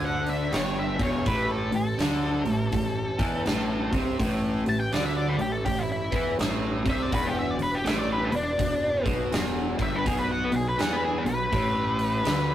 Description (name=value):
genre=blues rock power trio and southern rock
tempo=82 BPM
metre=4/4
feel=swing 63% on 8ths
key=unclear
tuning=A4 = 439 Hz
part: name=octave-fuzz lead guitar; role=melody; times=0.0-12.5 s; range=D4 to A5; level=-29 LUFS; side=left 1 dB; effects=distortion
part: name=distorted electric guitar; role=riff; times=0.0-12.5 s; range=E2 to E3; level=-28 LUFS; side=equal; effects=distortion
part: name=fuzz picked electric bass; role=bass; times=0.0-12.5 s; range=E1 to E2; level=-30 LUFS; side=equal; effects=overdrive
part: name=huge arena drum kit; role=drums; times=0.3-12.5 s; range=hi-hat, kick drum, snare drum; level=-30 LUFS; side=equal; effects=none
room=wet booth ambience, RT60 0.2 s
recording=rough rehearsal-room recording, tube saturation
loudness=-24 LUFS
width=side -12 dB against mid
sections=0.0-12.5 A section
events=lead electric guitar solo 0.0-12.5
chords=0.0 E5; 1.3 Am; 7.1 E5; 10.1 B5